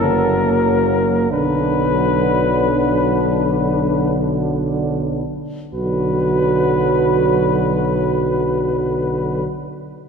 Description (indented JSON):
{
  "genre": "classical, hymn-like piece for brass band",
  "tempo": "free time",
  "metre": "none",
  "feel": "none",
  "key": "B minor",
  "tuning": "A4 = 441 Hz",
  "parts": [
    { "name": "warm flugelhorn", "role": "melody", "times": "0.0-9.4 s", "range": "A#4 to B4", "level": "-21 LUFS", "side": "left 6 dB", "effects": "none" },
    { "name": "mellow French horn section", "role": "second line", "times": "0.0-9.5 s", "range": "A#3 to F#4", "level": "-22 LUFS", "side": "right 4 dB", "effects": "none" },
    { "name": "bright trombone", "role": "accompaniment", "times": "0.0-9.4 s", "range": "D3 to F#3", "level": "-23 LUFS", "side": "right 4 dB", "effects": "none" },
    { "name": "warm euphonium", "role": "accompaniment", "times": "0.0-9.4 s", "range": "F#3", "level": "-24 LUFS", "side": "left 3 dB", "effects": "none" },
    { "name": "mellow tuba", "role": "bass", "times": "0.0-9.4 s", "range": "F#1 to B1", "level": "-22 LUFS", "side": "equal", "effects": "none" }
  ],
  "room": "wet church reverb, RT60 3.1 s",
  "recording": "minimal, uncompressed stereo recording",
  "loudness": "-15 LUFS",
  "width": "side -6 dB against mid",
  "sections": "0.0-5.7 A section; 5.7-10.1 B section",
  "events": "slowing down 0.0-5.7",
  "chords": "0.0 F#; 1.3 Bm",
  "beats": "free time"
}